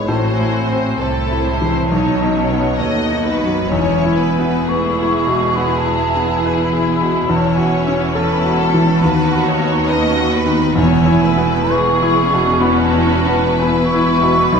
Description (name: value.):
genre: classical, romantic movement for piano and orchestra.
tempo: 58-71 BPM.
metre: 4/4.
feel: rubato.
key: E major.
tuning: A4 = 443 Hz.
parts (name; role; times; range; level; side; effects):
clear concert grand piano; melody; 0.0-14.6 s; B1 to C#5; -17 LUFS; equal; none.
mellow hollow concert flute; second line; 0.0-14.6 s; G#5 to C#6; -21 LUFS; left 1 dB; none.
rich studio violin section; second line; 0.0-14.6 s; G#4 to D#5; -23 LUFS; left 4 dB; none.
clear symphonic viola section; accompaniment; 0.0-14.6 s; F#3 to G#4; -22 LUFS; right 1 dB; none.
rich symphonic cello section; bass; 0.0-14.6 s; D#2 to C3; -23 LUFS; equal; none.
rich symphonic double bass section; bass; 0.0-14.6 s; E1 to D#2; -22 LUFS; right 2 dB; none.
timpani; percussion; 3.7-5.1, 10.8-12.1 s; E2; -26 LUFS; equal; none.
room: wet scoring stage reverb, RT60 1.5 s.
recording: minimal, uncompressed stereo recording.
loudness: -13 LUFS.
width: side -6 dB against mid.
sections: 0.0-14.6 A section.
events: none.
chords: 0.1 Am; 1.9 B9; 3.7 E; 7.3 F#m7/E; 9.0 B/D#; 10.8 E.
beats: | 0.08 1.01 1.90 2.81 | 3.72 4.69 5.56 6.43 | 7.29 8.15 9.02 9.90 | 10.76 11.72 12.62 13.60 | 14.53.